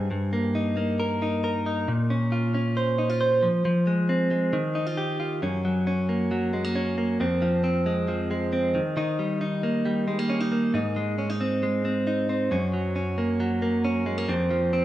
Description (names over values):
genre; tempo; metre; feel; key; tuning
indie pop; 135 BPM; 4/4; straight; unclear; A4 = 440 Hz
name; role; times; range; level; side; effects
direct-recorded clean electric guitar; solo; 0.0-14.8 s; F2 to C5; -23 LUFS; equal; spring reverb
room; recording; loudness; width
digital ambience; rough home demo mix, small room ambience; -23 LUFS; side -14 dB against mid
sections
0.0-5.4 A section; 5.4-14.8 B section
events
none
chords
0.0 Eb/G; 1.9 Bbmadd9; 3.4 Fm; 4.5 Ebadd9; 5.4 Gb; 7.2 Fm; 8.7 Eb; 10.7 Ab; 12.5 Gb; 14.3 F5